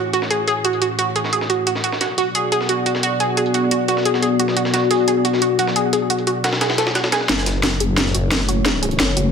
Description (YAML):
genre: dark technical drum and bass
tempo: 176 BPM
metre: 4/4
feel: straight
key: F# minor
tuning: A4 = 440 Hz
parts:
  - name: dark analog pad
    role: sustained chords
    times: 0.0-9.3 s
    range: A3 to F#5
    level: -21 LUFS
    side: left 3 dB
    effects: chorus, phaser, sidechain pumping
  - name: analog pluck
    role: arpeggios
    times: 0.0-9.2 s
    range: F#4 to F#5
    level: -20 LUFS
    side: right 2 dB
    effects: chorus, sidechain pumping, dub echo
  - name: breakbeat sampler-style drum kit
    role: drums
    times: 0.1-9.2 s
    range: hi-hat, snare drum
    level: -26 LUFS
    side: equal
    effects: high-pass filter on snare, low-pass filter on snare, high-pass filter on hats, low-pass filter on hats
  - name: drum and bass drum kit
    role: drums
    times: 0.1-9.2 s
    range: hi-hat, snare drum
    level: -21 LUFS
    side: equal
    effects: low-pass filter on hats, low-pass filter on snare
  - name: snarling distorted saw bass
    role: bass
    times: 7.3-9.3 s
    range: F#1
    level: -20 LUFS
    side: left 1 dB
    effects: overdrive
  - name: electronic kick drum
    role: drums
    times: 7.3-9.1 s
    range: none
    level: barely audible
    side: none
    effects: none
room: moderate lush hall reverb, RT60 1.7 s, digital ambience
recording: none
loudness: -16 LUFS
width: side -6 dB against mid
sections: 0.0-7.3 A section; 7.3-9.3 B section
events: build-up 7.3-9.3; drum fill 7.3-9.3; filter sweep on synth arpeggio sound 7.3-9.3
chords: 0.0 F#m7; 1.8 Bm; 7.3 F#m7